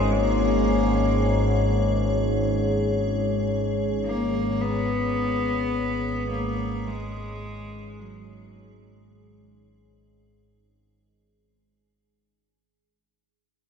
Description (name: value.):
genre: dark ambient drone.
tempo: free time.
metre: none.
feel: none.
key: unclear.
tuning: A4 = 442 Hz.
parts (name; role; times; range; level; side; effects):
rich cello; melody; 0.0-9.1 s; F#3 to B3; -28 LUFS; left 1 dB; ping-pong delay.
dark analog pad; sustained chords; 0.0-11.5 s; G#3 to C#5; -28 LUFS; left 4 dB; chorus.
analog drone; drone; 0.0-11.5 s; G#1 to G#2; -26 LUFS; equal; chorus, phaser.
icy glass pad; texture; 0.0-11.4 s; G#4; -34 LUFS; right 1 dB; chorus, built-in reverb.
room: wet cathedral reverb, RT60 7.0 s.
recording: none.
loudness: -22 LUFS.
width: side -7 dB against mid.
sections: 0.0-11.4 A section.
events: fade-out 0.0-11.4.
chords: 0.0 G#sus2.